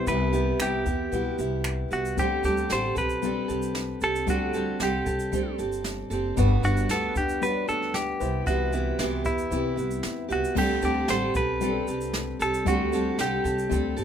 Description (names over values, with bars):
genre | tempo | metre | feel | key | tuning
acoustic pop | 114 BPM | 4/4 | straight | D mixolydian | A4 = 438 Hz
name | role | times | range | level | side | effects
direct-recorded clean electric guitar | melody | 0.0-13.9 s | E4 to C5 | -29 LUFS | left 1 dB | none
felt-muted upright piano | accompaniment | 0.0-14.0 s | G3 to D5 | -34 LUFS | left 9 dB | none
picked steel-string acoustic guitar | accompaniment | 0.0-14.0 s | C3 to A4 | -28 LUFS | right 3 dB | none
upright bass | bass | 0.0-14.0 s | F#1 to C3 | -30 LUFS | equal | none
jazz brush drum kit | drums | 0.1-14.0 s | crash cymbal, finger snaps, kick drum, shaker, snare drum | -33 LUFS | equal | none
room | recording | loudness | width
light reverb | minimal, uncompressed stereo recording | -24 LUFS | side -8 dB against mid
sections
0.0-10.6 A section; 10.6-14.0 A section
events
none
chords
0.0 Cmaj7; 2.2 D7sus4; 6.4 Gmaj7; 8.2 Cmaj7; 10.6 D7sus4